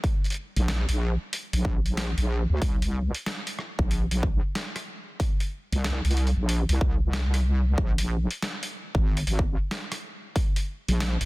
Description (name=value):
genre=glitch hop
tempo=93 BPM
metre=4/4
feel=swing 63% on 16ths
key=unclear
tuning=A4 = 440 Hz
part: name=boom bap sampler-style drum kit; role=drums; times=0.0-11.3 s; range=hi-hat, rim click, snare drum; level=-32 LUFS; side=equal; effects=small room ambience
part: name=electronic kick drum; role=drums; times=0.0-10.5 s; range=none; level=-25 LUFS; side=equal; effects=overdrive, small room ambience
part: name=wobble bass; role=bass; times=0.6-11.3 s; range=Ab1 to D2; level=-24 LUFS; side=equal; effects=chorus, tube saturation
room=digital ambience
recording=dense, heavily limited modern master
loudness=-24 LUFS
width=side -22 dB against mid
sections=0.0-11.3 A section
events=none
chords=none